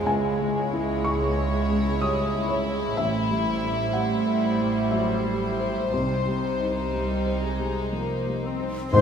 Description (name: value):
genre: cinematic, emotional film score for orchestra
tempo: 61 BPM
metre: 3/4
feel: rubato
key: unclear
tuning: A4 = 440 Hz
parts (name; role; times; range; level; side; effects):
- warm symphonic violin section; second line; 0.0-9.0 s; Eb4 to C5; -31 LUFS; left 4 dB; none
- dark studio viola section; accompaniment; 0.0-9.0 s; G3 to Eb4; -31 LUFS; right 2 dB; none
- felt-muted upright piano; accompaniment; 0.0-9.0 s; A1 to Eb6; -28 LUFS; left 3 dB; none
- warm symphonic violin section; melody; 0.1-9.0 s; C5 to C6; -32 LUFS; left 4 dB; none
- dark symphonic double bass section; bass; 0.1-9.0 s; Ab1 to Db2; -31 LUFS; right 3 dB; none
- warm symphonic cello section; bass; 0.1-9.0 s; Db2 to C3; -29 LUFS; right 4 dB; none
- small flute group; second line; 8.9-9.0 s; C5; -19 LUFS; left 4 dB; none
- warm oboe; second line; 8.9-9.0 s; C5; -22 LUFS; right 5 dB; none
- mellow French horn section; sustained chords; 8.9-9.0 s; Ab3 to Eb4; -23 LUFS; left 9 dB; none
- timpani; percussion; 8.9-9.0 s; Ab2; -18 LUFS; left 1 dB; none
room: wet scoring stage reverb, RT60 1.5 s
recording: minimal, uncompressed stereo recording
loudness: -23 LUFS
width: side -7 dB against mid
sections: 0.0-8.9 A section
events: none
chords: 0.1 Dbm; 3.0 Am7; 5.9 Cm